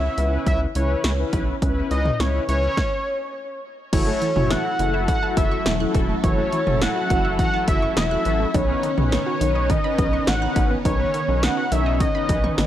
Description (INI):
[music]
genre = synth-pop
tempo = 104 BPM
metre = 4/4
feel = straight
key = unclear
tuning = A4 = 436 Hz
[part]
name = fat analog lead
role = melody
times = 0.0-12.7 s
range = C#5 to F#5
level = -24 LUFS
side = equal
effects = none
[part]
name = mellow synth brass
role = accompaniment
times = 0.0-12.6 s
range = C#4 to C#5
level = -27 LUFS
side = left 2 dB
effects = chorus
[part]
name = rubbery square bass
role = bass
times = 0.0-12.7 s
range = E1 to C#2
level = -24 LUFS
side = equal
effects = none
[part]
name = punchy analog drum machine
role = drums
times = 0.2-12.7 s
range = crash cymbal, hi-hat, kick drum, snare drum, toms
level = -24 LUFS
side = equal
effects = none
[part]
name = phased string machine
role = sustained chords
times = 3.9-12.7 s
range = D#3 to A4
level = -29 LUFS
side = equal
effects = ensemble chorus, phaser
[part]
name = wide unison pluck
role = arpeggios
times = 3.9-12.7 s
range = D#3 to F#6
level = -30 LUFS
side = right 2 dB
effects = tape echo
[sound]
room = light reverb, digital ambience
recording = none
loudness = -19 LUFS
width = side -12 dB against mid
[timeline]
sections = 0.0-3.9 A section; 3.9-12.7 B section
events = stop 2.8-3.9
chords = 0.0 C#m7; 3.9 F#m7; 8.5 Badd9